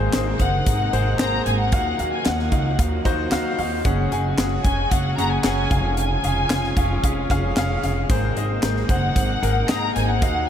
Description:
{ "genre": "piano-driven pop", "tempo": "113 BPM", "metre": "4/4", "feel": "straight", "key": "unclear", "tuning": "A4 = 440 Hz", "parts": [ { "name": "clear grand piano", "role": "accompaniment", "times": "0.0-10.5 s", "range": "Ab2 to Bb5", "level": "-25 LUFS", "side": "left 2 dB", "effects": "wide subtle chorus" }, { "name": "warm studio string section", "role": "sustained chords", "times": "0.0-10.5 s", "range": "C3 to Gb4", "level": "-32 LUFS", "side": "right 2 dB", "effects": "none" }, { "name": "upright bass", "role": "bass", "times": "0.0-10.4 s", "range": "F1 to Eb2", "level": "-24 LUFS", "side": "right 1 dB", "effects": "none" }, { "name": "modern studio drum kit", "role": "drums", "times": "0.1-10.3 s", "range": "handclaps, hi-hat, kick drum, snare drum", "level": "-24 LUFS", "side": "equal", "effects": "none" }, { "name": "dark studio violin section", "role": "melody", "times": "0.4-10.5 s", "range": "Gb5 to Bb5", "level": "-26 LUFS", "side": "left 2 dB", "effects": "none" } ], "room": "moderate huge ambient reverb, RT60 4.2 s", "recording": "dreamy mix soaked in reverb", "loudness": "-18 LUFS", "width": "side -9 dB against mid", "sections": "0.0-10.5 A section", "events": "grand piano fill 2.8-3.9", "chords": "0.0 Abadd9; 1.7 Ebmadd9; 3.9 Gbsus2; 5.7 Db/F; 8.1 Abadd9" }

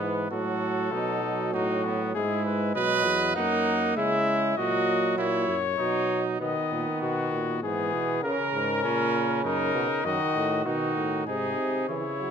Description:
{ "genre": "classical, imitative canzona for brass ensemble", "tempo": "99 BPM", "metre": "3/4", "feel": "straight", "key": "unclear", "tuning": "A4 = 440 Hz", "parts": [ { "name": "warm cornet", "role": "melody", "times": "0.0-12.3 s", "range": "F#4 to F#5", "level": "-29 LUFS", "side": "left 10 dB", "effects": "none" }, { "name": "clear trumpet", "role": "second line", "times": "0.0-12.3 s", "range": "B3 to B4", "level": "-30 LUFS", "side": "right 6 dB", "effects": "none" }, { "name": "clear trombone", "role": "accompaniment", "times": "0.0-12.3 s", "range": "B#2 to A#3", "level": "-30 LUFS", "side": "right 2 dB", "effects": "none" }, { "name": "warm bass trombone", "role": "bass", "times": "0.0-12.3 s", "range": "E2 to C#3", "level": "-32 LUFS", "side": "right 2 dB", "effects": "none" } ], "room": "moderate recital hall reverb, RT60 1.6 s", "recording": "none", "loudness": "-24 LUFS", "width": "side -7 dB against mid", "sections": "0.0-6.4 A section; 6.4-12.3 B section", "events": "none", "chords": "0.3 F#m/A; 0.9 B; 2.2 E/G#; 2.8 B; 4.0 C#m; 4.6 F#/A#; 5.8 B; 7.6 E/G#; 8.2 G#sus24; 9.4 D#m/F#; 10.0 D#dim/F#; 11.3 G#" }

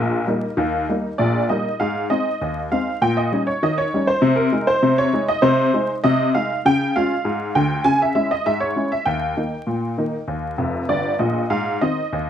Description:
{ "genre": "ragtime piano", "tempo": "99 BPM", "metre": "2/4", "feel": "straight", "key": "Ab major", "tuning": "A4 = 440 Hz", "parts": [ { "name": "honky-tonk upright piano", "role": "solo", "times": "0.0-12.3 s", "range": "F1 to Ab5", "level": "-18 LUFS", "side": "equal", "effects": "none" } ], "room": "moderate studio reverb, RT60 0.5 s", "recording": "vinyl crackle", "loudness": "-18 LUFS", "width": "side -9 dB against mid", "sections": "0.0-1.8 A section; 1.8-12.3 B section", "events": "honky-tonk piano fill 10.6-11.5", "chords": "0.0 Eb; 1.8 Ab; 3.0 Eb7/Bb; 4.2 Ab/C; 6.6 Db; 7.8 Dbm; 9.1 Eb; 11.5 Ab" }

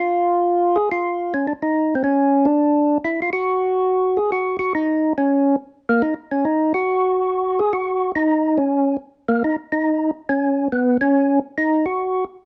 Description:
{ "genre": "jazz", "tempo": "140 BPM", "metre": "4/4", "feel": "swing 66% on 8ths", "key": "unclear", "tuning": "A4 = 441 Hz", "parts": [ { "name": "percussive tonewheel organ", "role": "solo", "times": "0.0-12.2 s", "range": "Bb3 to Ab4", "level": "-19 LUFS", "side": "equal", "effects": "slow rotary speaker, overdrive" } ], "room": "light reverb", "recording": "dark, warm production, nothing above 10.4 kHz", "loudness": "-19 LUFS", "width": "mono", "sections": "0.0-3.4 A section; 3.4-12.4 A section", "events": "none", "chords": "none" }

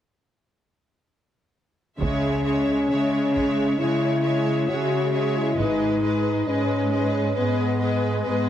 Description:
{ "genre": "cinematic, epic orchestral film score", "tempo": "67 BPM", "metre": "4/4", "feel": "straight", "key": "C# minor", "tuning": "A4 = 444 Hz", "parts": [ { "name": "rich symphonic violin section", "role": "melody", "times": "2.0-8.5 s", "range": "D#5 to E5", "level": "-34 LUFS", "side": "left 2 dB", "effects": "none" }, { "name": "rich symphonic violin section", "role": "second line", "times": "2.0-8.5 s", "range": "B4 to C#5", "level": "-30 LUFS", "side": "left 2 dB", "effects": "none" }, { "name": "clear symphonic viola section", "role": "accompaniment", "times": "2.0-8.5 s", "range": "G#3", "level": "-29 LUFS", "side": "right 2 dB", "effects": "none" }, { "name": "mellow French horn section", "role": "sustained chords", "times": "2.0-8.5 s", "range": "B3 to F#4", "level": "-23 LUFS", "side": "left 2 dB", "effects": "none" }, { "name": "clear symphonic cello section", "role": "bass", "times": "2.0-8.5 s", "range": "G#2 to C#3", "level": "-27 LUFS", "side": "right 3 dB", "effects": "none" }, { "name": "rich symphonic double bass section", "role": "bass", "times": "2.0-6.3 s", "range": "G#1 to C#2", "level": "-32 LUFS", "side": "right 3 dB", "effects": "none" }, { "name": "taiko ensemble", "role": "drums", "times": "2.0-3.8 s", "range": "none", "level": "-34 LUFS", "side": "right 1 dB", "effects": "none" } ], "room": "wet concert hall reverb, RT60 2.3 s", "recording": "heavily compressed radio sound", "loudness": "-20 LUFS", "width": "side -10 dB against mid", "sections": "2.0-8.5 A section", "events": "none", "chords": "2.0 C#m; 5.6 G#m" }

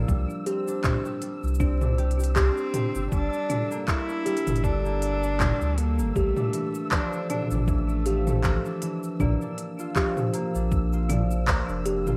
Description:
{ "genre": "folktronica", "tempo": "79 BPM", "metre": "4/4", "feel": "swing 56% on 16ths", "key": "G dorian", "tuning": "A4 = 438 Hz", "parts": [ { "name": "music box", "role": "second line", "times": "0.0-12.2 s", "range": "D4 to G4", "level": "-34 LUFS", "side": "equal", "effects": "delay" }, { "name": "concert harp", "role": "arpeggios", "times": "0.0-12.2 s", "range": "E3 to G4", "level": "-34 LUFS", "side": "equal", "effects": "delay" }, { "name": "warm sub bass", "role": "bass", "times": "0.0-12.2 s", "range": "F1 to D2", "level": "-28 LUFS", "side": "equal", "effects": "none" }, { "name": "flickering grainy texture", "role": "texture", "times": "0.0-12.2 s", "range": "E6", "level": "-45 LUFS", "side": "equal", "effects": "built-in reverb" }, { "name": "electronic kick drum", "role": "drums", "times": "0.1-11.6 s", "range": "none", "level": "-30 LUFS", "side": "equal", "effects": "none" }, { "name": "organic electronic drum kit", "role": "drums", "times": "0.1-12.2 s", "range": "handclaps, hi-hat, shaker, toms", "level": "-32 LUFS", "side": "equal", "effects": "none" }, { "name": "warm cello", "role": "melody", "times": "2.4-8.8 s", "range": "A3 to E4", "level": "-34 LUFS", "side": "equal", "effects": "none" } ], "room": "light reverb", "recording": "rough home demo mix, vinyl crackle", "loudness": "-26 LUFS", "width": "mono", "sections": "0.0-12.2 A section", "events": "none", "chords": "0.1 Csus2; 3.1 Gmadd9; 6.2 Dmadd9/A; 9.2 Bb" }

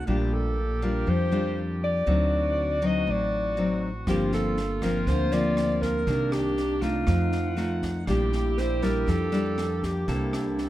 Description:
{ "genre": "bossa nova", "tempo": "120 BPM", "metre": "4/4", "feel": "straight", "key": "unclear", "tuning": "A4 = 439 Hz", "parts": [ { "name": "nylon-string guitar", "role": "accompaniment", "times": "0.0-10.7 s", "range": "G2 to A4", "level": "-28 LUFS", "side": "left 2 dB", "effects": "none" }, { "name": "mellow brass ensemble", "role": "sustained chords", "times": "0.0-10.7 s", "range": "C3 to Gb5", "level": "-38 LUFS", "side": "right 1 dB", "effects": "none" }, { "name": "upright bass", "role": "bass", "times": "0.0-10.7 s", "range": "G1 to F2", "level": "-29 LUFS", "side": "right 1 dB", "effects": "none" }, { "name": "mellow alto saxophone", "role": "melody", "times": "0.1-10.7 s", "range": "F4 to Eb5", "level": "-29 LUFS", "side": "equal", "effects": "plate reverb" }, { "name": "mellow hollow wooden-headed alto flute", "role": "second line", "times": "4.1-10.7 s", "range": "Bb3 to F4", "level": "-33 LUFS", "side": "right 3 dB", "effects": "none" }, { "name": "compact cocktail drum kit", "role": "drums", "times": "4.1-10.6 s", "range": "kick drum, rim click, snare drum", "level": "-34 LUFS", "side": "right 1 dB", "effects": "none" } ], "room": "light reverb", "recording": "none", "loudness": "-23 LUFS", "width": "side -14 dB against mid", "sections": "0.0-10.7 A section", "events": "none", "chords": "0.1 Bb6; 2.1 D7b9; 4.1 Gm11; 6.1 Cm9; 7.1 F7b9; 8.1 Bb6; 10.1 C13" }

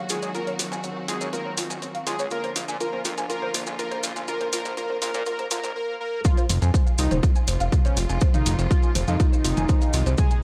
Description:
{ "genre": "melodic techno", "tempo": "122 BPM", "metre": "4/4", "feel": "straight", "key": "F phrygian", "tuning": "A4 = 440 Hz", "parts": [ { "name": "rich studio string section", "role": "sustained chords", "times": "0.0-10.4 s", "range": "C3 to Gb4", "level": "-38 LUFS", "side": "equal", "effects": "sidechain pumping" }, { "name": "fat analog lead", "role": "melody", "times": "0.1-10.4 s", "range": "Db4 to Bb4", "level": "-32 LUFS", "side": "equal", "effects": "analog chorus, sidechain pumping, tape echo" }, { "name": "woody wave-folded pluck", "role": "arpeggios", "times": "0.1-10.4 s", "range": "F4 to Ab5", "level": "-35 LUFS", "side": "equal", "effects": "ensemble chorus, sidechain pumping, tape echo" }, { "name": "fat analog bass", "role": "bass", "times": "0.1-10.2 s", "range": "Eb1 to Bb2", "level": "-28 LUFS", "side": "equal", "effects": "sidechain pumping, high-pass filter" }, { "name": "punchy analog drum machine", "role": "drums", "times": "0.1-10.4 s", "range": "hi-hat, toms", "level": "-34 LUFS", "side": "equal", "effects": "high-pass filter on hats, high-pass filter on toms, high-pass filter on room" }, { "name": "maracas", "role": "percussion", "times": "0.1-10.4 s", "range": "none", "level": "-36 LUFS", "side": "equal", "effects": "none" }, { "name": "electronic kick drum", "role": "drums", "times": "6.2-10.3 s", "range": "none", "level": "-22 LUFS", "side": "equal", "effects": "overdrive" } ], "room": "light reverb", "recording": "dry, gritty hardware recording, high-pass filter", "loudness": "-24 LUFS", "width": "mono", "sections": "0.0-6.2 A section; 6.2-10.4 B section", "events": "build-up 0.0-6.2; drum fill 0.0-5.8; drop 6.2-10.4", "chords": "0.0 Ebm/Gb; 2.3 Bb; 6.2 Fm" }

